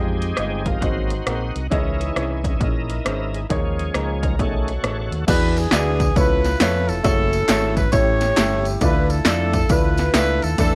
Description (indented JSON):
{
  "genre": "uptempo gospel",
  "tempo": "135 BPM",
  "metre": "4/4",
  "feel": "swing 64% on 8ths",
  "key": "unclear",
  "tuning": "A4 = 440 Hz",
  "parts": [
    { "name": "dark baby grand piano", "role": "accompaniment", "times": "0.0-10.8 s", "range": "Ab2 to F5", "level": "-28 LUFS", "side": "equal", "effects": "none" },
    { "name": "bright tonewheel organ", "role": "sustained chords", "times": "0.0-5.2 s", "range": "D#3 to C#5", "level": "-31 LUFS", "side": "equal", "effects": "slow rotary speaker, overdrive, chorus vibrato" },
    { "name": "fingered electric bass", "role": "bass", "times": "0.0-10.8 s", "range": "E#1 to F2", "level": "-26 LUFS", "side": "equal", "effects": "tube saturation" },
    { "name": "punchy analog drum machine", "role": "drums", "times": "0.2-10.7 s", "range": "crash cymbal, hi-hat, kick drum, ride cymbal, rim click, snare drum", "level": "-24 LUFS", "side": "equal", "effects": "none" },
    { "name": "clear horn section", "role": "melody", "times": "5.3-10.8 s", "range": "B3 to C#5", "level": "-24 LUFS", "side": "equal", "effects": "none" },
    { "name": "tambourine and handclaps", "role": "percussion", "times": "5.3-10.7 s", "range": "none", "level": "-32 LUFS", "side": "equal", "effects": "none" }
  ],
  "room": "small room ambience",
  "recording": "none",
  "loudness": "-20 LUFS",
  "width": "mono",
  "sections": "0.0-5.3 A section; 5.3-10.8 B section",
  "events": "tonewheel organ solo 0.0-5.3",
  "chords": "0.0 Fm9; 0.8 Ab7; 1.7 Dbmadd9; 3.5 Eb7sus4; 4.4 B13; 5.3 E9; 6.2 C#7alt; 7.1 F#m9; 7.9 A7; 8.8 Dmadd9"
}